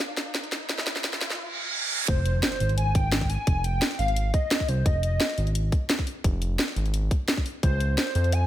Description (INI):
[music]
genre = liquid drum and bass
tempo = 173 BPM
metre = 4/4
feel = straight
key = F minor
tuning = A4 = 440 Hz
[part]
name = hollow clarinet-like synth lead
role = melody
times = 0.0-5.5, 7.6-8.5 s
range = C5 to Ab5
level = -30 LUFS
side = equal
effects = analog chorus, cassette tape, digital delay
[part]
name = garage drum kit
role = drums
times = 0.0-8.4 s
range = hi-hat, snare drum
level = -28 LUFS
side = equal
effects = studio reverb
[part]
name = riser, reverse cymbal and impact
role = sound effects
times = 0.0-3.5 s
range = none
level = -32 LUFS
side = right 2 dB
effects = none
[part]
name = smooth synth bass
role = bass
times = 2.1-8.5 s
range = F1 to F2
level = -24 LUFS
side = equal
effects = none
[part]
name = electronic kick drum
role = drums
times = 2.1-7.7 s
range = none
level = -24 LUFS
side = equal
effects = studio reverb
[sound]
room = digital ambience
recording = high-pass filter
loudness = -23 LUFS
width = side -13 dB against mid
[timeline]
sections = 0.0-2.1 A section; 2.1-8.5 B section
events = build-up 0.0-2.1; drum fill 0.0-1.4; riser 0.0-1.4; filter sweep on soft synth lead 0.0-2.1; filter sweep 0.0-2.1; reverse cymbal 1.4-2.1; drop 2.1-8.5; impact 2.1-3.5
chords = 0.0 N.C.; 2.1 Fm; 7.6 Dbmaj7